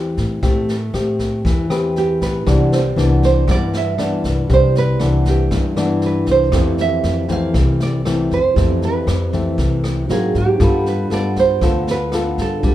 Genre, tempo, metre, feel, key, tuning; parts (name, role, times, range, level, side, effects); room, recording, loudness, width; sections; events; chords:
bossa nova; 118 BPM; 4/4; straight; C major; A4 = 440 Hz
nylon-string guitar; melody; 0.0-12.7 s; G4 to F5; -20 LUFS; right 5 dB
nylon-string guitar; accompaniment; 0.0-12.7 s; F2 to B4; -20 LUFS; left 2 dB
upright bass; bass; 0.0-12.7 s; C2 to A2; -20 LUFS; left 1 dB
jazz brush drum kit; drums; 0.2-12.7 s; kick drum, rim click, snare drum; -22 LUFS; equal
mellow tine electric piano; accompaniment; 2.4-12.7 s; C4 to B5; -27 LUFS; right 4 dB; medium stereo tremolo
light reverb; -14 LUFS; side -13 dB against mid
0.0-12.7 A section
0.0 Am9; 2.5 Cmaj9; 6.5 Fmaj7; 10.1 Ab9; 10.6 G9